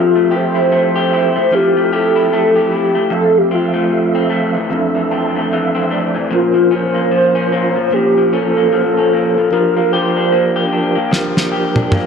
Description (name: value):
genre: indie pop, bedroom pop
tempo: 75 BPM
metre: 4/4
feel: swing 60% on 16ths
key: F major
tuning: A4 = 440 Hz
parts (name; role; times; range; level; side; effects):
- warbly nostalgic lead; melody; 0.0-10.7 s; F4 to C5; -14 LUFS; equal; analog chorus, analog delay
- electric guitar through a small old amp; accompaniment; 0.0-12.1 s; F2 to G4; -18 LUFS; left 4 dB; lush chorus, vibrato effect
- mellow tonewheel organ; accompaniment; 0.0-12.1 s; F3 to A5; -18 LUFS; right 3 dB; chorus vibrato, fast rotary speaker, cassette tape
- cloth-damped thuddy drum kit; drums; 11.1-12.1 s; snare drum, toms; -16 LUFS; equal; none
room: light reverb, small room ambience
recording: none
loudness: -12 LUFS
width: side -6 dB against mid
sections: 0.0-12.1 A section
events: tonewheel organ fill 4.7-6.3; drum fill 11.1-12.1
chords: 0.0 Fmaj9; 3.1 Dm9/F; 6.3 Bbmadd9; 9.5 C9sus4